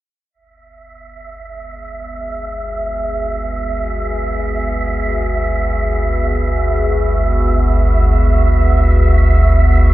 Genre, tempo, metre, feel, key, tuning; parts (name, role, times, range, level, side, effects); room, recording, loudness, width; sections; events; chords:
dark ambient drone; free time; A4 = 440 Hz
deep dark ambient pad; sustained chords; 2.0-9.9 s; B3 to E5; -23 LUFS; left 1 dB; chorus, built-in reverb
deep rumbling drone; drone; 1.9-9.9 s; G1 to D2; -14 LUFS; equal; built-in reverb, lush chorus
wind-like tuned noise texture; texture; 1.0-9.9 s; E5; -22 LUFS; right 3 dB; built-in reverb
moderate huge ambient reverb, RT60 7.4 s; dreamy mix soaked in reverb; -13 LUFS; side -16 dB against mid
0.3-9.9 A section
fade-in on ambient pad 0.3-9.9; filter sweep on synth drone 0.3-9.9
0.3 Eadd9